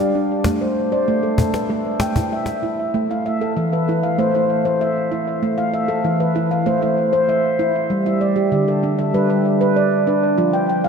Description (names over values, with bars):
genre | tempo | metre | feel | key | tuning
world meditative, meditative tuned percussion | 97 BPM | 4/4 | straight | A minor | A4 = 440 Hz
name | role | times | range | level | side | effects
handpan | arpeggios | 0.0-10.9 s | D3 to G5 | -16 LUFS | equal | tape echo
cajon | percussion | 0.1-2.7 s | none | -23 LUFS | left 1 dB | none
room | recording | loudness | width
wet lush hall reverb, RT60 2.7 s | dreamy mix soaked in reverb | -16 LUFS | side -6 dB against mid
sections
0.0-2.9 A section; 2.9-10.9 B section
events
none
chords
0.5 Am; 7.9 G; 10.4 F5